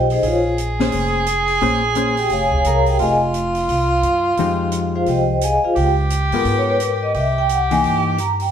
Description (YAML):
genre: jazz, small-group swing and bop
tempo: 174 BPM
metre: 4/4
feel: swing 62% on 8ths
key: F minor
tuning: A4 = 439 Hz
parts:
  - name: vibraphone with medium mallets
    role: melody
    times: 0.0-8.5 s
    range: Eb4 to Bb5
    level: -18 LUFS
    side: left 1 dB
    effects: none
  - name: upright bass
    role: bass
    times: 0.0-8.5 s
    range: F1 to Ab2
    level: -22 LUFS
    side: equal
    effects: none
  - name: open jazz drum kit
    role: drums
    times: 0.1-8.5 s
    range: hi-hat, kick drum, snare drum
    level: -31 LUFS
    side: right 2 dB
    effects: none
  - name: bright tenor saxophone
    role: second line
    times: 0.2-8.5 s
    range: F4 to Ab4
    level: -20 LUFS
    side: right 2 dB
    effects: none
  - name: hollow-body jazz guitar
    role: accompaniment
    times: 0.8-2.2, 4.4-8.2 s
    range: E3 to C5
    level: -22 LUFS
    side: left 5 dB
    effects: none
room: wet stone room reverb, RT60 1.1 s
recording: band playing live in one room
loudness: -15 LUFS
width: side -8 dB against mid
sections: 0.0-8.5 A section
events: none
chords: 0.2 Bbm9; 3.0 Fm9; 5.8 Db7; 7.1 C7#9